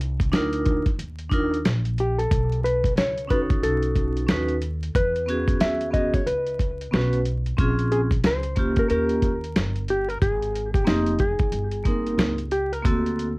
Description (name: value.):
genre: hip hop, jazz-hop.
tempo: 91 BPM.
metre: 4/4.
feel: swing 61% on 16ths.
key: unclear.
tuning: A4 = 440 Hz.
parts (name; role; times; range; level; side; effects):
upright bass; bass; 0.0-13.4 s; F1 to E2; -27 LUFS; equal; none.
dusty soul sampler-style drum kit; drums; 0.0-13.4 s; hi-hat, kick drum, snare drum; -23 LUFS; equal; none.
vibraphone with hard mallets; accompaniment; 0.3-13.3 s; Bb3 to B4; -25 LUFS; right 1 dB; none.
hollow-body jazz guitar; melody; 2.0-13.4 s; Eb4 to E5; -26 LUFS; equal; analog delay.
room: light reverb.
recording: worn, warbling old tape, cassette tape, vinyl crackle, warbly pitch drift.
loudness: -20 LUFS.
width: side -26 dB against mid.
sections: 0.0-13.4 A section.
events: none.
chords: 0.0 Cm11; 2.3 B7; 4.9 E6; 7.6 Bbm7; 8.9 Eb9; 10.2 Abmaj7; 12.9 D7b13.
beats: 0.33 0.98 1.65 | 2.30 2.96 3.62 4.28 | 4.94 5.60 6.26 6.92 | 7.58 8.24 8.90 9.56 | 10.22 10.88 11.54 12.19 | 12.85.